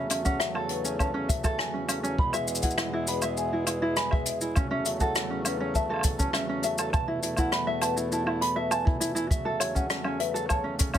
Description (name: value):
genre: folktronica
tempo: 101 BPM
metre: 4/4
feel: straight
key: unclear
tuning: A4 = 441 Hz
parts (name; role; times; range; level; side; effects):
- marimba with medium mallets; second line; 0.0-11.0 s; B4 to A5; -34 LUFS; left 2 dB; digital delay
- pedal harmonium; sustained chords; 0.0-11.0 s; E2 to A3; -33 LUFS; right 1 dB; none
- tenor ukulele; arpeggios; 0.0-11.0 s; C#4 to B5; -30 LUFS; right 1 dB; digital delay
- jazz brush drum kit; drums; 0.1-11.0 s; hi-hat, rim click, shaker, woodblock; -31 LUFS; left 1 dB; none
- kick drum; drums; 0.3-11.0 s; none; -27 LUFS; equal; none
room: light reverb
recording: none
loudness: -25 LUFS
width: side -10 dB against mid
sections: 0.0-11.0 A section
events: none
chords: 0.0 A6/E; 2.2 E; 4.6 A6/E; 6.9 Esus4; 9.3 A6/E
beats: 0.40 0.99 1.59 | 2.18 2.77 3.37 3.96 | 4.56 5.15 5.75 6.34 | 6.93 7.53 8.12 8.72 | 9.31 9.90 10.50